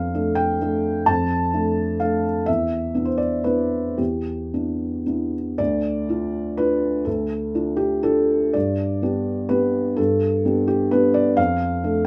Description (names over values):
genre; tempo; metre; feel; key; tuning
neoclassical minimalist piano; 110-132 BPM; 3/4; rubato; D dorian; A4 = 441 Hz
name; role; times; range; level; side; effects
felt-muted upright piano; solo; 0.0-12.1 s; D2 to A5; -22 LUFS; equal; none
room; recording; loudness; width
wet small room ambience, RT60 0.5 s; rough home demo mix; -22 LUFS; mono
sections
0.0-5.6 A section; 5.6-12.1 B section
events
none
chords
0.0 Dm/F; 2.5 Em7; 5.6 Dm; 8.5 G; 11.4 Dm/F